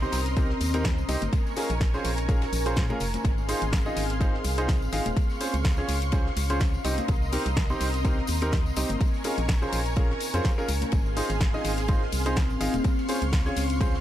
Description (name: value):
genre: piano house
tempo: 125 BPM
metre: 4/4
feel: swing 56% on 16ths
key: Ab major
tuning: A4 = 441 Hz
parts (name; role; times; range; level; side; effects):
- analog string pad; sustained chords; 0.0-14.0 s; Ab4 to Db6; -35 LUFS; right 1 dB; ensemble chorus, sidechain pumping
- bright concert grand piano; riff; 0.0-13.9 s; C4 to F5; -31 LUFS; right 1 dB; sidechain pumping, low-pass filter, analog delay
- organ-like FM bass; bass; 0.0-14.0 s; Eb1 to Bb2; -29 LUFS; equal; sidechain pumping
- big rock drum kit; drums; 0.0-14.0 s; ride cymbal, snare drum; -43 LUFS; left 2 dB; none
- tambourine and congas; percussion; 0.0-13.9 s; none; -39 LUFS; left 4 dB; analog delay
- deep dark ambient pad; texture; 0.0-14.0 s; C4 to Ab5; -34 LUFS; left 1 dB; chorus, built-in reverb, sidechain pumping
- house drum kit; drums; 0.1-13.9 s; hi-hat, snare drum; -36 LUFS; left 1 dB; analog delay
- electronic kick drum; drums; 0.4-13.9 s; none; -25 LUFS; equal; none
room: light reverb, studio reverb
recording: echo-heavy mix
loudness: -23 LUFS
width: side -12 dB against mid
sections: 0.0-14.0 A section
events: none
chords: 0.0 Cm7; 1.3 Bbm7; 3.2 Ab6; 5.2 Dbmaj7; 6.8 Cm7; 9.0 Bbm7; 10.9 Ab6; 12.8 Dbmaj7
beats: 0.37 0.85 | 1.33 1.81 2.29 2.77 | 3.25 3.73 4.21 4.69 | 5.17 5.65 6.13 6.61 | 7.09 7.57 8.05 8.53 | 9.01 9.49 9.97 10.45 | 10.93 11.41 11.89 12.37 | 12.85 13.33 13.81